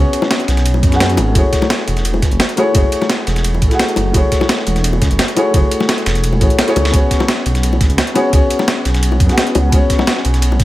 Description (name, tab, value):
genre	liquid drum and bass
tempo	172 BPM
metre	4/4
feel	straight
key	F# minor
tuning	A4 = 443 Hz
part	felt-muted upright piano	accompaniment	0.0-10.6 s	A3 to F#5	-18 LUFS	left 1 dB	dub echo
part	swelling detuned saw bass	bass	0.0-10.6 s	E1 to F#2	-15 LUFS	equal	tube saturation
part	breakbeat sampler-style drum kit	drums	0.1-10.6 s	hi-hat, snare drum	-18 LUFS	equal	none
part	dusty soul sampler-style drum kit	drums	0.1-10.6 s	ride cymbal, snare drum	-24 LUFS	right 1 dB	high-pass filter on snare, high-pass filter on cymbals
part	bongos	percussion	0.2-10.6 s	none	-20 LUFS	left 3 dB	none
part	electronic kick drum	drums	0.8-10.6 s	none	-14 LUFS	equal	none
room	digital ambience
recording	none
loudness	-12 LUFS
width	side -16 dB against mid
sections	0.0-10.6 A section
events	none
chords	0.0 C#7sus4; 1.4 F#m9; 6.9 C#7sus4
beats	0.31 0.66 1.00 | 1.35 1.70 2.05 2.40 | 2.75 3.10 3.45 3.79 | 4.14 4.49 4.84 5.19 | 5.54 5.89 6.24 6.59 | 6.93 7.28 7.63 7.98 | 8.33 8.68 9.03 9.38 | 9.72 10.07 10.42